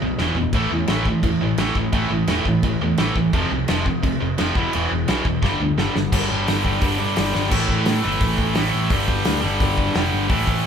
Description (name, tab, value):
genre	punk rock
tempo	172 BPM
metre	4/4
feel	straight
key	A minor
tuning	A4 = 440 Hz
part	tight distorted guitar	riff	0.0-10.7 s	E2 to A3	-21 LUFS	right 1 dB	distortion
part	picked electric bass	bass	0.0-10.7 s	E1 to A2	-25 LUFS	left 1 dB	none
part	loose indie drum kit	drums	0.2-10.6 s	crash cymbal, hi-hat, kick drum, snare drum, toms	-23 LUFS	equal	none
room	light reverb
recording	band playing live in one room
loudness	-18 LUFS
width	side -7 dB against mid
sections	0.0-6.1 A section; 6.1-7.5 B section; 7.5-10.7 C section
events	drum fill 0.2-0.5, 5.4-6.1, 7.3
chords	0.0 E5; 0.5 A5; 3.3 F5; 4.6 E5; 5.4 G5; 7.5 A5; 8.9 G5